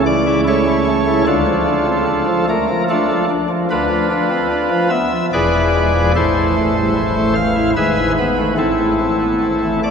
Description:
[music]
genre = classical, chorale-style piece for pipe organ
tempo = 74 BPM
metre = 3/4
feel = rubato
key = A minor from 3.7 s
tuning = A4 = 440 Hz
[part]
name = pipe organ, cornet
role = solo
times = 0.0-9.9 s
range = E1 to F5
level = -14 LUFS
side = equal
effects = none
[sound]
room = wet cathedral reverb, RT60 6.6 s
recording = heard from further back in the room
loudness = -14 LUFS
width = side -6 dB against mid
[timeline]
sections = 0.0-9.9 A section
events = none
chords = 0.0 A/C#; 1.3 Dm; 3.7 Bdim/D; 5.3 E7b9; 6.1 Am; 7.8 E/G#; 8.6 Am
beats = 0.45 | 1.25 2.07 2.89 | 3.70 4.51 5.32 | 6.13 6.95 7.76 | 8.58 9.41

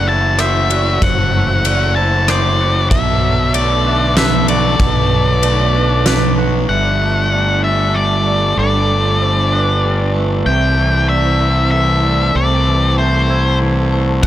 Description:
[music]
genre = post-rock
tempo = 95 BPM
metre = 3/4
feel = straight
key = unclear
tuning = A4 = 440 Hz
[part]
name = octave-fuzz lead guitar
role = melody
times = 0.0-14.3 s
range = C5 to A5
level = -17 LUFS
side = left 3 dB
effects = distortion, digital delay
[part]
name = warm studio string section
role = sustained chords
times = 0.0-14.3 s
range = D3 to A4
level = -25 LUFS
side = right 1 dB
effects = none
[part]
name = twangy electric guitar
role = arpeggios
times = 0.0-14.3 s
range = B2 to C5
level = -23 LUFS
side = equal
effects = lush chorus, digital delay
[part]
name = vibraphone with medium hard mallets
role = arpeggios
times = 0.0-14.3 s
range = A4 to E5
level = -24 LUFS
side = right 6 dB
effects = digital delay
[part]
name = fuzz fingered electric bass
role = bass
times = 0.0-14.3 s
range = F#1 to C2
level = -16 LUFS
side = equal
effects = overdrive
[part]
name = huge arena drum kit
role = drums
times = 0.4-6.2, 14.2-14.3 s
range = kick drum, ride cymbal, rim click, snare drum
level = -18 LUFS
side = equal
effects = none
[sound]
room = studio reverb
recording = dark, warm production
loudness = -12 LUFS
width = side -12 dB against mid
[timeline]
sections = 0.0-6.7 A section; 6.7-14.3 B section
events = none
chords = 0.0 F#m7b5; 2.9 Bm7; 6.7 Gsus2; 10.5 C6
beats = 0.40 | 1.03 1.66 2.29 | 2.92 3.55 4.18 | 4.80 5.43 6.06 | 6.69 7.32 7.95 | 8.58 9.21 9.84 | 10.46 11.09 11.72 | 12.35 12.98 13.61 | 14.24

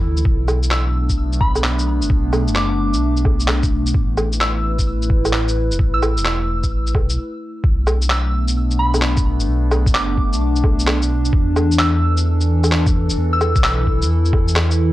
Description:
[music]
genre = future garage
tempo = 130 BPM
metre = 4/4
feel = swing 65% on 16ths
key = B minor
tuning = A4 = 441 Hz
[part]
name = warbly tape-like pad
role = sustained chords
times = 0.0-14.9 s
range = E3 to B4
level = -23 LUFS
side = equal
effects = chorus, built-in reverb, phaser, vintage 12-bit sampler grit, sidechain pumping
[part]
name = dark detuned saw bass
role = bass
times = 0.0-14.9 s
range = E1 to E2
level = -18 LUFS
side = equal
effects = tube saturation, sidechain pumping
[part]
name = electronic shaker, woodblock and handclaps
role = drums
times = 0.2-14.8 s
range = none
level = -22 LUFS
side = equal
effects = none
[part]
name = electronic kick drum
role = drums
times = 0.3-14.4 s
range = none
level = -18 LUFS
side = equal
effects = none
[part]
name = soft synth bell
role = melody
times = 0.7-14.3 s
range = B5 to E6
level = -26 LUFS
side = right 1 dB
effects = chorus, phaser, vintage 12-bit sampler grit, tape echo
[sound]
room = light reverb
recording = dry, gritty hardware recording, cassette tape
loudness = -15 LUFS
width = side -16 dB against mid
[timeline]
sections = 0.0-7.6 A section; 7.6-14.9 B section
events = break 7.2-7.6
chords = 0.3 Bm7; 3.9 Asus2; 7.6 Bm7; 11.3 E7sus4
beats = | 0.25 0.71 1.18 1.64 | 2.10 2.56 3.02 3.48 | 3.94 4.41 4.87 5.33 | 5.79 6.25 6.71 7.18 | 7.64 8.10 8.56 9.02 | 9.48 9.95 10.41 10.87 | 11.33 11.79 12.25 12.71 | 13.18 13.64 14.10 14.56

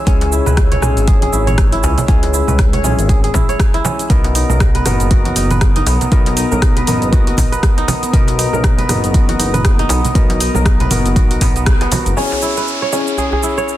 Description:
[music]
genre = afro house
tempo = 119 BPM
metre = 4/4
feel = swing 58% on 16ths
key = C# dorian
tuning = A4 = 440 Hz
[part]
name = warm analog pad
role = sustained chords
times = 0.0-13.8 s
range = B3 to E6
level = -25 LUFS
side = left 1 dB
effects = chorus, sidechain pumping
[part]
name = kora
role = arpeggios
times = 0.0-13.8 s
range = B3 to C#5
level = -21 LUFS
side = right 3 dB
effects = sidechain pumping, low-pass filter, digital delay
[part]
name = felt-muted upright piano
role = stabs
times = 0.0-13.8 s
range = G#3 to C#5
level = -22 LUFS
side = left 4 dB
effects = vintage 12-bit sampler grit, sidechain pumping, digital delay
[part]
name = smooth synth bass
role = bass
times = 0.1-12.1 s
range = F#1 to C#2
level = -18 LUFS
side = equal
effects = sidechain pumping
[part]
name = afro-pop drum kit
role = drums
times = 0.1-13.8 s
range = hi-hat, rim click, shaker, toms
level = -21 LUFS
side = right 1 dB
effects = small room ambience, soft clipping on snare
[part]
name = electronic kick drum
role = drums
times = 0.1-11.8 s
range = none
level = -13 LUFS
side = equal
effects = small room ambience
[part]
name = congas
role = percussion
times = 0.1-12.1 s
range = none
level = -24 LUFS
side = right 3 dB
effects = none
[part]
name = djembe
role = percussion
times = 0.2-13.4 s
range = none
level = -24 LUFS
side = left 1 dB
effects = none
[part]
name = downlifter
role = sound effects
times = 12.2-13.8 s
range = none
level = -22 LUFS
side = equal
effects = none
[sound]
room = light reverb, studio reverb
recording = dense, heavily limited modern master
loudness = -11 LUFS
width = side -14 dB against mid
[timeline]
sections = 0.0-12.2 A section; 12.2-13.8 B section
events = band accent 11.7; filter sweep on kora 12.2-13.8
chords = 0.0 C#m; 4.1 Bmaj7; 12.2 C#m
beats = | 0.07 0.57 1.08 1.58 | 2.08 2.59 3.09 3.60 | 4.10 4.61 5.11 5.61 | 6.12 6.62 7.13 7.63 | 8.13 8.64 9.14 9.65 | 10.15 10.66 11.16 11.66 | 12.17 12.67 13.18 13.68

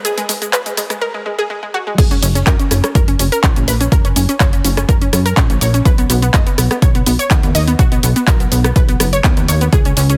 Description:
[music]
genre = progressive house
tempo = 124 BPM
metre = 4/4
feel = straight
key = F# major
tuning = A4 = 440 Hz
[part]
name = analog pluck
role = arpeggios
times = 0.0-10.2 s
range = G#3 to D#5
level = -21 LUFS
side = equal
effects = chorus, sidechain pumping, delay
[part]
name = plucky analog bass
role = bass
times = 0.0-10.2 s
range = F#1 to F#2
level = -19 LUFS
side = equal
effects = sidechain pumping, high-pass filter
[part]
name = big-room dance drum kit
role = drums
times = 0.0-10.2 s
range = cabasa, crash cymbal, handclaps, hi-hat, rim click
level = -22 LUFS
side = equal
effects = sidechain pumping on hats, high-pass filter on hats, small room ambience, sidechain pumping on perc, high-pass filter on perc, high-pass filter on snare, sidechain pumping on cymbals, high-pass filter on cymbals
[part]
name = electronic kick drum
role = drums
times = 2.0-9.8 s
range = none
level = -15 LUFS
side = equal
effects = overdrive, small room ambience
[sound]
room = digital ambience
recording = dense, heavily limited modern master, high-pass filter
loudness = -14 LUFS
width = mono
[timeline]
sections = 0.0-2.0 A section; 2.0-10.2 B section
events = build-up 0.0-2.0; filter sweep 0.0-2.0; break 1.0-2.0; drop 2.0-10.2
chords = 0.0 N.C.; 2.0 F#; 5.9 B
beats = | 0.05 0.53 1.02 1.50 | 1.98 2.47 2.95 3.44 | 3.92 4.40 4.89 5.37 | 5.86 6.34 6.82 7.31 | 7.79 8.27 8.76 9.24 | 9.73

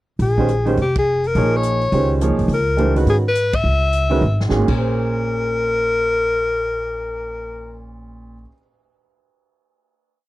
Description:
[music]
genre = modal jazz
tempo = 209 BPM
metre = 4/4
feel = swing 62% on 8ths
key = Bb dorian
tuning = A4 = 435 Hz
[part]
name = bright alto saxophone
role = melody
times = 0.2-7.9 s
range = G4 to Fb5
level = -20 LUFS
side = left 2 dB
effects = none
[part]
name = upright bass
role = bass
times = 0.2-8.4 s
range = F1 to Ab2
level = -21 LUFS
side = equal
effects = none
[part]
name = swinging big-band drum kit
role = drums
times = 0.2-4.7 s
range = crash cymbal, hi-hat, kick drum, ride cymbal, snare drum, toms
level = -28 LUFS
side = equal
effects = none
[part]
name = clear upright piano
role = accompaniment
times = 0.4-8.6 s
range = Bb2 to Db5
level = -22 LUFS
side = right 3 dB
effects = none
[sound]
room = little or no reverb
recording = dry, close 1970s-style studio recording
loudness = -16 LUFS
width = side -16 dB against mid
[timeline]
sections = 0.2-4.8 A section; 4.8-7.1 final hit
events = band accent 0.9, 3.5; drum fill 4.2-4.8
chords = 0.2 Bbm9; 2.5 Dbm9; 4.6 Bbm7; 4.8 Bbm9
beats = | 0.20 0.49 0.78 1.06 | 1.35 1.64 1.92 2.21 | 2.50 2.78 3.07 3.36 | 3.64 3.93 4.22 4.50 | 4.79 5.08 5.37 5.66 | 5.94 6.23 6.52 6.81

